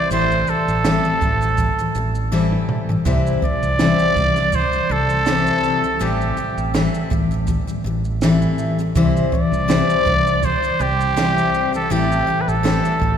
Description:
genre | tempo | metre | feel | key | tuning
acoustic pop | 81 BPM | 4/4 | swing 55% on 16ths | unclear | A4 = 440 Hz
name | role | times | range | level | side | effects
growling trumpet | melody | 0.0-13.2 s | G4 to D5 | -20 LUFS | right 1 dB | none
picked steel-string acoustic guitar | accompaniment | 0.0-13.2 s | A2 to C5 | -20 LUFS | left 3 dB | none
modern bright fingered electric bass | bass | 0.1-13.2 s | A1 to C2 | -23 LUFS | right 1 dB | none
compact cocktail drum kit | drums | 0.1-13.2 s | kick drum, shaker, snare drum, toms | -25 LUFS | right 3 dB | none
room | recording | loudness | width
wet cathedral reverb, RT60 4.5 s | recorded in a church or concert hall | -16 LUFS | side -8 dB against mid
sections
0.0-13.2 A section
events
drum fill 2.3-3.1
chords
0.1 Am7; 3.1 C; 6.0 Am7; 9.0 C; 11.9 Am7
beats
| 0.10 0.84 1.58 2.32 | 3.06 3.79 4.53 5.27 | 6.00 6.74 7.48 8.22 | 8.95 9.69 10.43 11.17 | 11.90 12.64

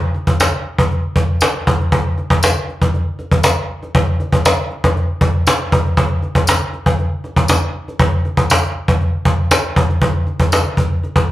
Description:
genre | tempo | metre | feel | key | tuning
funk | 119 BPM | 4/4 | straight | none | none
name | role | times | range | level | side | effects
cajon | drums | 0.1-11.3 s | none | -14 LUFS | equal | slapback echo
tambourine | percussion | 0.4-10.6 s | none | -23 LUFS | left 2 dB | none
room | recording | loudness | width
moderate club reverb, RT60 0.8 s | live gig heard through the venue's PA, club reverb | -14 LUFS | side -15 dB against mid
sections
0.0-10.0 A section; 10.0-11.3 B section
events
none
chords
none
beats
0.40 0.91 1.41 | 1.92 2.43 2.93 3.44 | 3.95 4.45 4.96 5.46 | 5.97 6.47 6.98 7.49 | 7.99 8.50 9.00 9.51 | 10.02 10.52 11.03

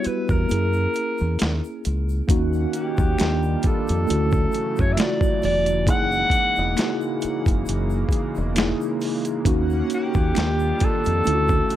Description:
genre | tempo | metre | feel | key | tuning
R&B, neo-soul | 67 BPM | 4/4 | swing 55% on 16ths | unclear | A4 = 440 Hz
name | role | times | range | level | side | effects
breathy alto saxophone | melody | 0.0-11.8 s | G4 to F#5 | -24 LUFS | equal | plate reverb
mellow tine electric piano | accompaniment | 0.0-11.8 s | C#3 to G#4 | -25 LUFS | right 1 dB | medium stereo tremolo, plate reverb
dusty soul sampler-style drum kit | drums | 0.0-11.8 s | hi-hat, kick drum, snare drum | -22 LUFS | equal | overdrive
egg shaker and finger snaps | percussion | 0.0-11.8 s | none | -41 LUFS | left 4 dB | none
deep dub fingered electric bass | bass | 0.1-11.6 s | E1 to F#2 | -24 LUFS | equal | none
chorused pulse-width pad | sustained chords | 2.3-11.8 s | C#3 to F#5 | -32 LUFS | equal | plate reverb
room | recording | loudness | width
light reverb | none | -19 LUFS | side -12 dB against mid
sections
0.0-2.3 A section; 2.3-11.8 B section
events
kick muted 0.5-2.3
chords
0.5 F#9; 2.3 D#m7; 3.2 D#maj9; 4.1 Dmaj9; 5.9 F#13; 9.5 D#m7; 10.3 D#maj9; 11.2 Dmaj9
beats
0.50 1.39 | 2.29 3.18 4.08 4.97 | 5.87 6.76 7.66 8.56 | 9.45 10.35 11.24

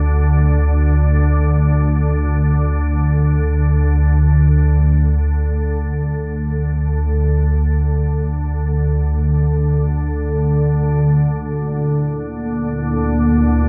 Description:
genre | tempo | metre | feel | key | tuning
dark ambient drone | free time | none | none | unclear | A4 = 440 Hz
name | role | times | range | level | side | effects
organ-like drone | drone | 0.0-13.7 s | D2 to D3 | -17 LUFS | equal | ensemble chorus, built-in reverb
bronze singing bowl | texture | 0.0-11.1 s | none | barely audible | none | none
deep dark ambient pad | sustained chords | 12.3-13.7 s | Bb3 to Db5 | -21 LUFS | equal | chorus, built-in reverb
room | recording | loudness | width
wet cathedral reverb, RT60 5.2 s | dark, warm production | -17 LUFS | mono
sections
0.0-11.1 A section; 11.1-13.7 B section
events
none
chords
0.0 N.C.; 11.1 Bbm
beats
free time

